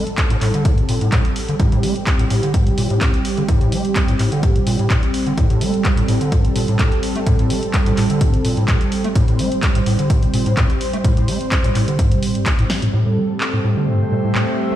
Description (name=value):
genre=acid house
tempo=127 BPM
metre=4/4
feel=swing 53% on 16ths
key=A minor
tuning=A4 = 440 Hz
part: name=warm analog pad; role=sustained chords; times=0.0-14.8 s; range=G3 to C5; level=-22 LUFS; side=right 2 dB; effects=chorus, sidechain pumping
part: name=overdriven acid bass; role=riff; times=0.0-14.8 s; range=G2 to C4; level=-19 LUFS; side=equal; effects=distortion, tube saturation, ensemble chorus, cassette tape
part: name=punchy analog drum machine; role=drums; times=0.1-14.5 s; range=handclaps, hi-hat, snare drum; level=-25 LUFS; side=equal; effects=studio reverb
part: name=electronic kick drum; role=drums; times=0.2-12.6 s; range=none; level=-18 LUFS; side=equal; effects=studio reverb
part: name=airy breathy pad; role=texture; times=12.9-14.8 s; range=A3 to E5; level=-24 LUFS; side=left 2 dB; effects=chorus, sidechain pumping
room=light reverb, digital ambience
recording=played on a big sound system in a bare room, stone room reverb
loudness=-15 LUFS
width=side -12 dB against mid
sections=0.0-12.9 A section; 12.9-14.8 B section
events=drum fill 12.7; filter sweep on acid bass 12.9-14.8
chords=0.0 Am7